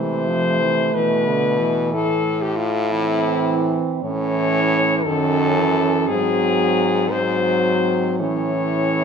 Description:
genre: classical, lyrical piece for horn quartet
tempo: 57 BPM (dotted quarters)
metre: 6/8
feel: uneven beats, rubato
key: A minor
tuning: A4 = 436 Hz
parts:
  - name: clear French horn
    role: melody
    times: 0.0-9.0 s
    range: E4 to C#5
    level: -21 LUFS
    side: left 5 dB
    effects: none
  - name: mellow French horn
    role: second line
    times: 0.0-9.0 s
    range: A3 to C#4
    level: -24 LUFS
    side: right 10 dB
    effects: none
  - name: mellow French horn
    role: accompaniment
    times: 0.0-9.0 s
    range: D3 to F#3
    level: -23 LUFS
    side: equal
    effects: none
  - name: clear French horn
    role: bass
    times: 0.0-9.0 s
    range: F#2 to C3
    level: -24 LUFS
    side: right 2 dB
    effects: none
room: moderate recital hall reverb, RT60 1.5 s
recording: none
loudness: -17 LUFS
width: side -6 dB against mid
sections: 0.0-9.0 A section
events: none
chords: 0.0 Am/C; 1.9 Am; 5.1 D#m7b5/F#; 6.1 G#7; 8.2 A

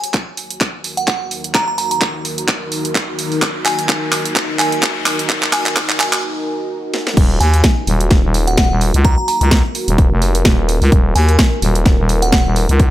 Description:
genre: bass house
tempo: 128 BPM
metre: 4/4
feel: swing 56% on 16ths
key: Eb minor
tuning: A4 = 440 Hz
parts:
  - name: glassy synth bell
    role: melody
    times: 0.0-12.4 s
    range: Gb5 to Bb5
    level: -22 LUFS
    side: right 1 dB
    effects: chorus, tape echo
  - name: dark analog pad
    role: sustained chords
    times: 0.9-12.9 s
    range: Eb3 to Bb4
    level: -24 LUFS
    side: equal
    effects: chorus, sidechain pumping
  - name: house drum kit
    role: drums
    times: 0.0-12.9 s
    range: crash cymbal, handclaps, hi-hat, snare drum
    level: -18 LUFS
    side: right 1 dB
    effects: none
  - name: riser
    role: sound effects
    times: 0.0-6.2 s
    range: none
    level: -28 LUFS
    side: left 2 dB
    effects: none
  - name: electronic kick drum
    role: drums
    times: 0.1-12.9 s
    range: none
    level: -14 LUFS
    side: equal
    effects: high-pass filter on kick, high-pass filter on room
  - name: growling FM bass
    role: bass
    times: 7.2-12.9 s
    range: Eb1 to Eb2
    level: -14 LUFS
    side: equal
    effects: tube saturation, sidechain pumping
room: light reverb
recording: high-pass filter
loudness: -13 LUFS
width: side -14 dB against mid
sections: 0.0-7.2 A section; 7.2-12.9 B section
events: build-up 0.0-7.2; drum fill 0.0-6.2, 6.9; riser 0.0-6.2; break 6.2-7.2; drop 7.2-12.9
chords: 0.0 Ebm

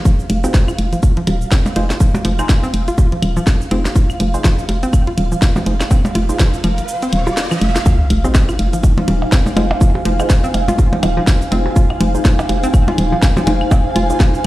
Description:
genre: minimal techno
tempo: 123 BPM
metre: 4/4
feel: swing 58% on 16ths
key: F minor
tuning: A4 = 439 Hz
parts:
  - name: granular cloud pad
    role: texture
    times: 0.0-14.5 s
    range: Eb4 to Ab5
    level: -23 LUFS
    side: equal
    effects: built-in reverb, sidechain pumping
  - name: hollow square pluck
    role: riff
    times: 0.1-14.3 s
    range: F3 to F4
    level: -23 LUFS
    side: equal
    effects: chorus, sidechain pumping, tape echo
  - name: electronic kick drum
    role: drums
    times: 0.1-14.3 s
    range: none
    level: -12 LUFS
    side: equal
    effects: none
  - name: house drum kit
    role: drums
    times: 0.1-14.5 s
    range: hi-hat, shaker, snare drum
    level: -23 LUFS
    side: equal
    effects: none
  - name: hollow knocking FM bass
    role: bass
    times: 0.3-14.5 s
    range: Eb1 to F1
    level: -17 LUFS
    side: equal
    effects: sidechain pumping
  - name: filtered dub chord stab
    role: stabs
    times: 0.4-14.2 s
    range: Eb4 to C5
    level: -26 LUFS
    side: right 1 dB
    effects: phaser, tape echo
  - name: percussion blips and claves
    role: percussion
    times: 0.4-14.3 s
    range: none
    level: -24 LUFS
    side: right 1 dB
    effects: tape echo
  - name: riser and sub drop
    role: sound effects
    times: 6.5-9.8 s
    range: none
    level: -23 LUFS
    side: equal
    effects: none
room: little or no reverb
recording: played on a big sound system in a bare room, stone room reverb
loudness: -12 LUFS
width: side -17 dB against mid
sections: 0.0-7.9 A section; 7.9-14.5 B section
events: riser 6.5-7.9; kick drops out 6.9-7.9; band accent 7.4; drop 7.9-14.5; impact 7.9-9.8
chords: 0.0 F7(no3); 7.9 Fm7

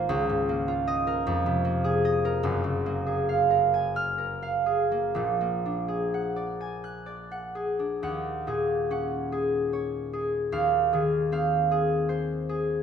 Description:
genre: classical, solo harp piece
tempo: 40-53 BPM (dotted quarters)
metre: 6/8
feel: rubato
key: Eb dorian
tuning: A4 = 440 Hz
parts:
  - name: concert harp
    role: solo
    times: 0.0-12.8 s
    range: Gb1 to F#6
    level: -24 LUFS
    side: right 1 dB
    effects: none
room: wet recital hall reverb, RT60 1.5 s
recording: none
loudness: -24 LUFS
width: side -7 dB against mid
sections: 0.0-8.0 A section; 8.0-12.8 B section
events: none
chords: 0.1 Db69; 1.3 Fm7; 2.5 Gbmaj9; 5.2 Bbaug7; 8.0 Ebm7; 10.5 Fm7/Eb

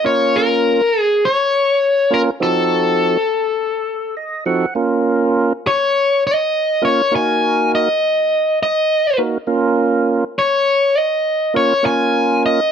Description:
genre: blues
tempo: 102 BPM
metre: 4/4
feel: straight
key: Bb minor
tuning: A4 = 441 Hz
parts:
  - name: biting overdriven guitar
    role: melody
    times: 0.0-12.7 s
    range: A4 to Ab5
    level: -15 LUFS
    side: left 2 dB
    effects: none
  - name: tonewheel organ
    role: accompaniment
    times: 0.0-12.6 s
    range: F3 to Gb5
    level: -17 LUFS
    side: right 4 dB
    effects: slow rotary speaker
room: little or no reverb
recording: dry, close 1970s-style studio recording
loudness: -14 LUFS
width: side -7 dB against mid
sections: 0.0-4.8 A section; 4.8-12.7 B section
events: tonewheel organ fill 3.9-4.8; overdriven electric guitar solo 4.8-12.7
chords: 0.0 Bbm; 2.4 F7b9; 4.8 Bbm; 7.1 Ebm; 9.5 Bbm

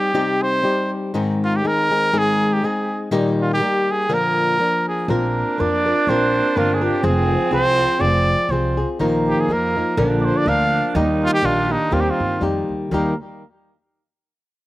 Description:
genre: mexican folk, mariachi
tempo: 122 BPM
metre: 2/4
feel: swing 53% on 8ths, rubato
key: Eb major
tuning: A4 = 441 Hz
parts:
  - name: clear trumpet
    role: melody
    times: 0.0-13.2 s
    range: Eb4 to F5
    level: -20 LUFS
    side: right 1 dB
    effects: slapback echo
  - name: flamenco guitar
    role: accompaniment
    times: 0.0-13.1 s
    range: Ab2 to Bb4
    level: -21 LUFS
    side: left 2 dB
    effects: slapback echo
  - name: growling alto saxophone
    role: second line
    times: 5.1-13.2 s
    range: Bb3 to Eb4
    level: -24 LUFS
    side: right 4 dB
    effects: slapback echo
  - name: upright bass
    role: bass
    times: 5.1-13.2 s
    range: F1 to G2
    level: -23 LUFS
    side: right 1 dB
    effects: none
room: little or no reverb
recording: recorded outdoors, with no room sound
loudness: -16 LUFS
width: side -16 dB against mid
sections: 0.0-12.9 A section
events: none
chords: 0.0 Cm; 1.1 Ab; 3.1 Eb/Bb; 4.1 Bb; 5.1 Bbsus2; 7.0 Fm; 9.0 Bbsus4; 10.0 Bb; 11.0 Eb

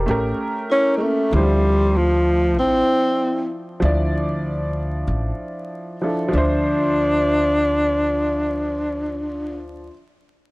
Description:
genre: hip hop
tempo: 96 BPM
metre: 4/4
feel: swing 60% on 16ths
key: D minor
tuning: A4 = 440 Hz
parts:
  - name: warm upright piano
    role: accompaniment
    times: 0.0-9.9 s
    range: E3 to E5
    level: -25 LUFS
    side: equal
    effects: none
  - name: upright bass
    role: bass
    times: 0.0-9.9 s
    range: A1 to D2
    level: -23 LUFS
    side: equal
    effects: transformer saturation
  - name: breathy tenor saxophone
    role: melody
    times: 0.7-9.6 s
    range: F3 to D4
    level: -18 LUFS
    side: equal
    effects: none
  - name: vibraphone with soft mallets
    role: second line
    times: 0.7-9.9 s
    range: A3 to F4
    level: -29 LUFS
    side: left 1 dB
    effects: none
room: studio reverb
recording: dry, gritty hardware recording, transformer saturation, vinyl crackle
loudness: -18 LUFS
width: side -22 dB against mid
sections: 0.0-6.3 A section; 6.3-8.8 B section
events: none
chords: 0.1 A7b9; 1.3 Dm9

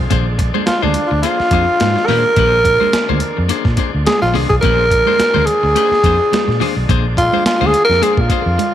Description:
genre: funk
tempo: 106 BPM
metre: 4/4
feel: swing 56% on 16ths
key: Bb mixolydian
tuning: A4 = 441 Hz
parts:
  - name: clean electric guitar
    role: accompaniment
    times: 0.0-8.6 s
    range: Bb3 to C5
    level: -22 LUFS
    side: left 13 dB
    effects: spring reverb
  - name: bright tonewheel organ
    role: sustained chords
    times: 0.0-8.7 s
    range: D3 to D4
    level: -28 LUFS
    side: equal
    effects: slow rotary speaker, overdrive
  - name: vintage muted fingered electric bass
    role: bass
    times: 0.0-8.6 s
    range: Bb1 to Bb2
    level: -18 LUFS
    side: equal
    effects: none
  - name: breakbeat sampler-style drum kit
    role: drums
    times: 0.1-8.7 s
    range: hi-hat, kick drum, snare drum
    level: -20 LUFS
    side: equal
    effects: none
  - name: congas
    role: percussion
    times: 0.1-8.7 s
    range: none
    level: -25 LUFS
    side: right 11 dB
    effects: none
  - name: growling tenor saxophone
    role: melody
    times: 0.7-8.7 s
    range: D4 to Bb4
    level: -14 LUFS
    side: equal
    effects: tape echo
room: light reverb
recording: 1960s-style stereo with parts hard left and right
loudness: -12 LUFS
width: side -11 dB against mid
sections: 0.0-8.7 A section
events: tenor saxophone solo 0.0-8.7; drum fill 8.6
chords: 0.0 Bb9

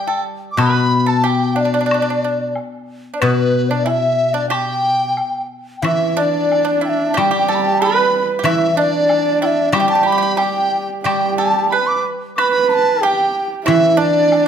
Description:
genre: chinese traditional, Chinese chamber ensemble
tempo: 92 BPM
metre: 2/4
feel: rubato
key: G gong mode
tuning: A4 = 440 Hz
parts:
  - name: mellow hollow large dizi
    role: melody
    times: 0.0-14.5 s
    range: B4 to D6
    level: -19 LUFS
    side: equal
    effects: none
  - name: mellow large dizi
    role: second line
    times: 0.0-14.5 s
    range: B4 to D6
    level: -21 LUFS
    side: left 4 dB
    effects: none
  - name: pipa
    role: second line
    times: 0.0-14.5 s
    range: B3 to B4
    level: -23 LUFS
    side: right 5 dB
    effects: none
  - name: guzheng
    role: accompaniment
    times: 0.0-14.5 s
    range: B2 to G3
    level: -21 LUFS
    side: left 3 dB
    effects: none
  - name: woodblock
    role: percussion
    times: 0.6-14.5 s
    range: none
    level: -26 LUFS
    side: left 4 dB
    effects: none
  - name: dark horsehead fiddle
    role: second line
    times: 5.8-14.5 s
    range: D4 to B4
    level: -19 LUFS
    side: right 6 dB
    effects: none
room: moderate recital hall reverb, RT60 1.4 s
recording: minimal, uncompressed stereo recording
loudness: -14 LUFS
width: side -8 dB against mid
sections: 0.0-5.8 A section; 5.8-14.5 B section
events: none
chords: none

